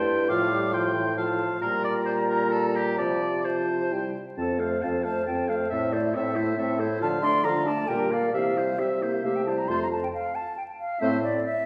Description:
quick classical-period movement for wind quintet; 135 BPM; 3/4; rubato; F major; A4 = 440 Hz
concert flute; melody; 0.0-11.7 s; D5 to D6; -32 LUFS; equal
clear oboe; second line; 0.0-11.2 s; G4 to A5; -34 LUFS; equal
mellow clarinet; accompaniment; 0.0-11.2 s; C4 to C5; -34 LUFS; equal
mellow bassoon; bass; 0.0-11.4 s; F2 to D3; -30 LUFS; equal
clear French horn; accompaniment; 0.3-11.2 s; E3 to C4; -34 LUFS; equal
wet recital hall reverb, RT60 1.4 s; heard from further back in the room, vinyl crackle; -26 LUFS; mono
0.0-4.4 A section; 4.4-11.7 B section
0.3 F/A; 1.6 Gm7/Bb; 3.0 F/C; 3.9 C; 4.4 F; 5.7 Am; 7.0 Dm; 7.9 Gm/Bb; 8.3 C; 9.7 F; 11.0 Am

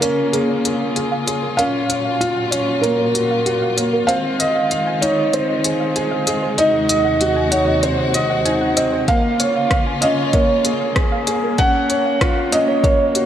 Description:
piano and strings electronica; 96 BPM; 4/4; straight; Db major; A4 = 445 Hz
felt-muted upright piano; melody; 0.0-13.3 s; Ab4 to Gb5; -20 LUFS; right 2 dB; tape echo
rich chamber string section; sustained chords; 0.0-13.3 s; Eb2 to Gb4; -24 LUFS; left 2 dB; sidechain pumping
soft round pluck; arpeggios; 0.0-13.1 s; Bb4 to Db6; -26 LUFS; right 3 dB; analog chorus, sidechain pumping, tape echo
warm grand piano; riff; 0.0-13.3 s; Bb3 to F5; -20 LUFS; left 1 dB; tape echo
organic electronic drum kit; drums; 0.0-13.3 s; hi-hat, rim click; -22 LUFS; left 2 dB
electronic kick drum; drums; 9.1-13.0 s; -18 LUFS; equal; overdrive
wet lush hall reverb, RT60 2.5 s; -15 LUFS; side -10 dB against mid
0.0-13.3 A section
build-up 0.0-13.3
0.0 Db6; 1.6 Gbmaj7; 4.1 Fm7; 6.6 Ab7/Eb; 9.1 Db6; 11.6 Gbmaj7

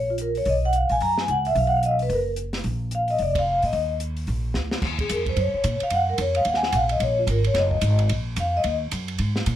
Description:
jazz, small-group swing and bop; 220 BPM; 4/4; swing 61% on 8ths; Eb minor; A4 = 440 Hz
vibraphone with soft mallets; melody; 0.0-8.7 s; F4 to Bb5; -22 LUFS; left 1 dB
upright bass; bass; 0.0-9.6 s; F1 to Bb2; -25 LUFS; right 1 dB
compact cocktail drum kit; drums; 0.2-9.5 s; crash cymbal, hi-hat, kick drum, ride cymbal, snare drum; -31 LUFS; right 1 dB
light reverb; -21 LUFS; side -11 dB against mid
0.0-4.8 A section; 4.8-9.6 B section
band accent 3.3; drum fill 4.6; vibraphone solo 4.8-9.6
0.5 B5; 2.6 Bb5; 3.7 Eb5; 4.8 Ebm

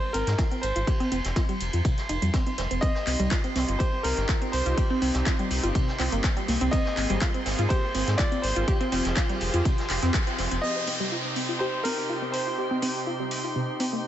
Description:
progressive house; 123 BPM; 4/4; straight; C minor; A4 = 436 Hz
bright concert grand piano; melody; 0.0-14.1 s; Bb4 to Eb5; -32 LUFS; equal; sidechain pumping, dub echo
drifting glass-harmonics texture; texture; 0.0-14.1 s; C6; -38 LUFS; right 2 dB; chorus, built-in reverb, sidechain pumping
wide unison pluck; arpeggios; 0.1-14.0 s; C3 to C5; -30 LUFS; right 1 dB; sidechain pumping, dub echo
round analog bass; bass; 0.1-10.6 s; F1 to Ab2; -27 LUFS; equal; sidechain pumping
deep house drum kit; drums; 0.1-13.9 s; handclaps, hi-hat; -33 LUFS; equal; overdrive, sidechain pumping on hats, small room ambience
vintage brush drum kit; drums; 0.1-10.6 s; ride cymbal, snare drum; -38 LUFS; equal; high-pass filter on cymbals, small room ambience, high-pass filter on snare, high-pass filter on room
electronic kick drum; drums; 0.4-10.2 s; -25 LUFS; equal; small room ambience
supersaw pad; sustained chords; 2.8-14.1 s; C3 to G5; -34 LUFS; right 1 dB; sidechain pumping
downlifter; sound effects; 10.6-14.1 s; -35 LUFS; equal
light reverb, small room reverb; nothing above 8.0 kHz; -23 LUFS; side -11 dB against mid
0.0-10.6 A section; 10.6-14.1 B section
filter sweep on synth pluck 0.0-10.6, 10.6-14.1; band accent 10.1
0.0 Abadd9; 0.9 F5; 2.8 Cm; 6.7 Abadd9; 8.7 Fmadd9; 10.6 Cm

